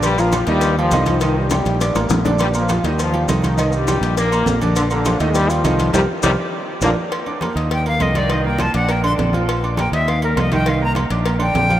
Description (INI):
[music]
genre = latin, salsa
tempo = 203 BPM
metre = 4/4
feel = straight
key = Bb major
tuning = A4 = 439 Hz
[part]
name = bright trombone section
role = melody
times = 0.0-6.9 s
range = G2 to F4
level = -21 LUFS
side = left 2 dB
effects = none
[part]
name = clear concert grand piano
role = accompaniment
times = 0.0-11.8 s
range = D3 to Eb6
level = -22 LUFS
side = right 3 dB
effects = none
[part]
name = fingered electric bass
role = bass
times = 0.0-11.8 s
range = A1 to Eb2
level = -20 LUFS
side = equal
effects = none
[part]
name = agogo bells and timbales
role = percussion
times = 0.0-11.8 s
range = none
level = -27 LUFS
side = right 5 dB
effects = none
[part]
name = congas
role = percussion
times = 0.0-11.8 s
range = none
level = -26 LUFS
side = left 1 dB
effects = none
[part]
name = cowbell and bongos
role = percussion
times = 0.0-11.7 s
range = none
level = -27 LUFS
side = left 6 dB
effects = none
[part]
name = maracas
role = percussion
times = 0.0-6.9 s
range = none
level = -32 LUFS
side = left 4 dB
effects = none
[part]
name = bright silver concert flute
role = melody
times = 7.7-11.8 s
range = Bb4 to C6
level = -21 LUFS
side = left 1 dB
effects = none
[sound]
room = moderate huge ambient reverb, RT60 7.3 s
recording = in a vast, echoing space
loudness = -15 LUFS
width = side -12 dB against mid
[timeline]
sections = 0.0-7.1 A section; 7.1-11.8 B section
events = drum fill 1.5-2.4, 6.2-7.1; band accent 5.9-7.1; flute solo 7.1-11.8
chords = 0.0 Bb; 0.6 Ebadd9; 1.2 Cm7; 1.8 Bb; 3.0 Ebadd9; 3.6 Cm7; 4.2 Bb; 5.4 Ebadd9; 5.9 C7(no3); 6.5 Bb; 7.7 Eb5; 8.3 Cm7; 8.9 Bb; 10.1 Eb5; 10.7 Cm7; 11.3 Bb